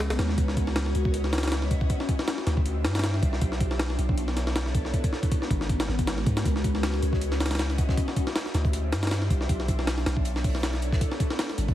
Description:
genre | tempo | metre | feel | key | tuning
drum and bass, jungle | 158 BPM | 4/4 | swing 55% on 16ths | unclear | A4 = 441 Hz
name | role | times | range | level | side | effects
long sustained 808-style bass | bass | 0.0-11.7 s | G#1 to G#2 | -27 LUFS | equal | none
breakbeat sampler-style drum kit | drums | 0.0-11.7 s | hi-hat, kick drum, snare drum | -26 LUFS | equal | studio reverb
damped 70s drum kit | drums | 6.5-11.7 s | hi-hat, snare drum | -42 LUFS | right 3 dB | high-pass filter on hats, studio reverb, high-pass filter on snare, high-pass filter on room
room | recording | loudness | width
light reverb, small room ambience | heavily compressed radio sound, vinyl crackle, faint mains hum | -24 LUFS | side -13 dB against mid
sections
0.0-11.7 A section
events
none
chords
none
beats
0.00 | 0.38 0.76 1.14 1.52 | 1.90 2.28 2.66 3.04 | 3.42 3.80 4.18 4.55 | 4.93 5.32 5.70 6.07 | 6.45 6.83 7.21 7.59 | 7.97 8.35 8.73 9.11 | 9.49 9.87 10.25 10.63 | 11.01 11.39

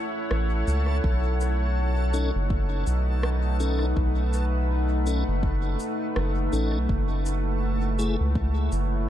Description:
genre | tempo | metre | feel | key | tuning
ambient dub | 82 BPM | 4/4 | swing 59% on 16ths | unclear | A4 = 444 Hz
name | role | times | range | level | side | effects
deep dark ambient pad | sustained chords | 0.0-9.1 s | A3 to F#5 | -29 LUFS | equal | chorus, built-in reverb
backwards swelling texture | texture | 0.0-9.1 s | A4 | -39 LUFS | equal | built-in reverb
soft dub sub bass | bass | 0.3-9.1 s | F#1 to C#2 | -24 LUFS | equal | none
electronic rim click and shaker | drums | 0.3-8.9 s | none | -37 LUFS | equal | overdrive, studio reverb, dub echo
electronic kick drum | drums | 1.0-8.5 s | none | -27 LUFS | equal | studio reverb
tonewheel organ | stabs | 2.1-8.2 s | A3 to A4 | -35 LUFS | left 4 dB | chorus vibrato, dub echo
room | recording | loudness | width
digital ambience | dark, warm production | -23 LUFS | side -11 dB against mid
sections
0.0-9.1 A section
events
none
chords
0.0 F#m7; 1.0 B7; 6.9 F#m7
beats
0.31 | 1.04 1.77 2.50 3.23 | 3.97 4.70 5.43 6.16 | 6.89 7.62 8.36 9.09

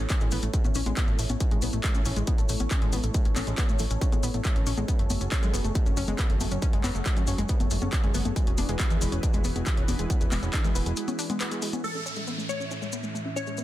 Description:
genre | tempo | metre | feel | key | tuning
uplifting trance | 138 BPM | 4/4 | straight | A major | A4 = 441 Hz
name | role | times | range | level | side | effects
lush unison pad | sustained chords | 0.0-13.6 s | A2 to E5 | -36 LUFS | right 1 dB | chorus, phaser, sidechain pumping
wide unison pluck | arpeggios | 0.0-13.6 s | G#3 to D4 | -34 LUFS | left 2 dB | sidechain pumping, tape echo
fat analog bass | bass | 0.0-10.9 s | E1 to A2 | -30 LUFS | equal | sidechain pumping
electronic kick drum | drums | 0.1-10.6 s | none | -26 LUFS | equal | distortion
punchy analog drum machine | drums | 0.1-11.8 s | congas, handclaps, hi-hat | -33 LUFS | left 2 dB | sidechain pumping on hats, sidechain pumping on perc
maracas | percussion | 0.1-13.6 s | none | -39 LUFS | left 2 dB | none
glassy wavetable pluck | second line | 11.8-13.6 s | A4 to C#5 | -34 LUFS | left 2 dB | chorus, tape echo
downlifter | sound effects | 11.8-13.6 s | none | -37 LUFS | equal | none
room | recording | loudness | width
little or no reverb | dense, heavily limited modern master | -24 LUFS | side -14 dB against mid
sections
0.0-11.8 A section; 11.8-13.6 B section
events
filter sweep on analog synth pad 0.0-11.8; break 11.0-11.8; filter sweep on synth arpeggio sound 11.8-13.6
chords
0.0 A; 4.9 F#madd9; 8.4 Eadd9; 11.8 A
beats
0.10 0.54 0.97 | 1.41 1.84 2.27 2.71 | 3.14 3.58 4.01 4.45 | 4.88 5.32 5.75 6.19 | 6.62 7.06 7.49 7.93 | 8.36 8.80 9.23 9.67 | 10.10 10.54 10.97 11.40 | 11.84 12.28 12.71 13.14 | 13.58

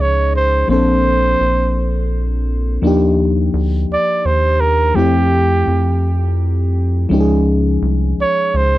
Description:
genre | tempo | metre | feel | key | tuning
slow six-eight R&B | 56 BPM (dotted quarters) | 6/8 | straight | unclear | A4 = 442 Hz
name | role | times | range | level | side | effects
warm flugelhorn | melody | 0.0-8.8 s | G4 to D5 | -17 LUFS | right 2 dB | none
mellow FM electric piano | accompaniment | 0.0-8.8 s | F3 to A4 | -18 LUFS | left 2 dB | chorus
rubbery square bass | bass | 0.0-8.8 s | Bb1 to F2 | -16 LUFS | equal | none
room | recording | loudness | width
little or no reverb | dry, close 1970s-style studio recording | -13 LUFS | side -16 dB against mid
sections
0.0-8.8 A section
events
none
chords
0.0 Dbmaj9; 0.7 Bbmaj9; 2.8 Ebmaj9; 5.0 Fmaj9; 7.1 Dbmaj9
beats
| 0.68 1.75 | 2.82 3.89 | 4.96 6.04 | 7.11 8.18

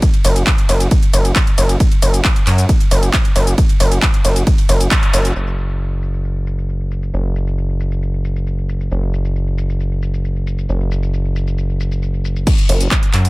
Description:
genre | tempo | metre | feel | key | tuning
driving peak-time techno | 135 BPM | 4/4 | straight | unclear | A4 = 440 Hz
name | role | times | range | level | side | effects
electronic kick drum | drums | 0.0-5.0, 12.5-13.0 s | none | -14 LUFS | equal | none
techno drum kit | drums | 0.0-13.3 s | crash cymbal, handclaps, hi-hat, ride cymbal, shaker | -21 LUFS | equal | low-pass filter on snare, sidechain pumping on hats, low-pass filter on hats, sidechain pumping on perc, low-pass filter on perc, sidechain pumping on cymbals, low-pass filter on cymbals, low-pass filter on room
gritty driven synth bass | bass | 0.2-13.3 s | F#1 to F#2 | -16 LUFS | equal | distortion, sidechain pumping
room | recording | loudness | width
little or no reverb | echo-heavy mix | -14 LUFS | side -23 dB against mid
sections
0.0-5.4 A section; 5.4-12.5 B section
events
drop 0.0-5.4; band accent 4.9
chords
none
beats
| 0.03 0.47 0.91 1.36 | 1.80 2.25 2.69 3.14 | 3.58 4.03 4.47 4.91 | 5.36 5.80 6.25 6.69 | 7.14 7.58 8.03 8.47 | 8.91 9.36 9.80 10.25 | 10.69 11.14 11.58 12.03 | 12.47 12.91

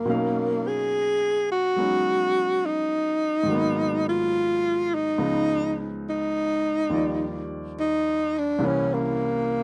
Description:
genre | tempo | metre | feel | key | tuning
jazz ballad | 70 BPM | 4/4 | swing 68% on 8ths | unclear | A4 = 440 Hz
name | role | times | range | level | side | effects
breathy tenor saxophone | melody | 0.0-9.6 s | Bb3 to Ab4 | -25 LUFS | equal | none
clear baby grand piano | accompaniment | 0.0-9.6 s | C2 to E#5 | -31 LUFS | equal | none
room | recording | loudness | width
moderate booth ambience, RT60 0.2 s | dry, close 1970s-style studio recording | -24 LUFS | mono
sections
0.0-9.6 A section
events
tenor saxophone solo 0.0-9.6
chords
0.1 Bmaj9#11; 3.5 Abm7; 5.2 Db9; 6.9 Ebmaj7; 8.6 C7b9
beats
| 0.07 0.92 1.77 2.62 | 3.48 4.33 5.19 6.05 | 6.91 7.76 8.62 9.47

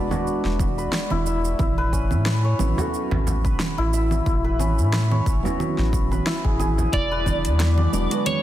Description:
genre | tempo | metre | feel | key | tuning
organic downtempo | 90 BPM | 4/4 | swing 55% on 16ths | E mixolydian | A4 = 440 Hz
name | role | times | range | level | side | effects
felt-muted upright piano | accompaniment | 0.0-8.4 s | F#3 to B4 | -29 LUFS | right 2 dB | sidechain pumping, digital delay
santur | arpeggios | 0.0-8.4 s | C#4 to E5 | -27 LUFS | left 2 dB | digital delay
warm sub bass | bass | 0.0-8.1 s | E1 to A2 | -22 LUFS | equal | tube saturation
deep house drum kit | drums | 0.1-8.4 s | congas, hi-hat, shaker, snare drum | -28 LUFS | right 3 dB | overdrive
frame drum | percussion | 0.1-6.9 s | none | -29 LUFS | right 1 dB | none
electronic kick drum | drums | 0.6-7.4 s | none | -26 LUFS | equal | overdrive
electric slide guitar | melody | 6.9-8.4 s | C#5 to D5 | -26 LUFS | right 1 dB | digital delay
warbly tape-like pad | sustained chords | 7.1-8.4 s | D3 to E4 | -32 LUFS | left 1 dB | chorus, built-in reverb, vintage 12-bit sampler grit, sidechain pumping
room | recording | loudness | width
light reverb | dense, heavily limited modern master | -19 LUFS | side -13 dB against mid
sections
0.0-6.9 A section; 6.9-8.4 B section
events
none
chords
0.0 E9; 1.6 A69; 6.9 E9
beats
0.26 0.93 | 1.60 2.26 2.93 3.60 | 4.26 4.93 5.60 6.26 | 6.93 7.60 8.26

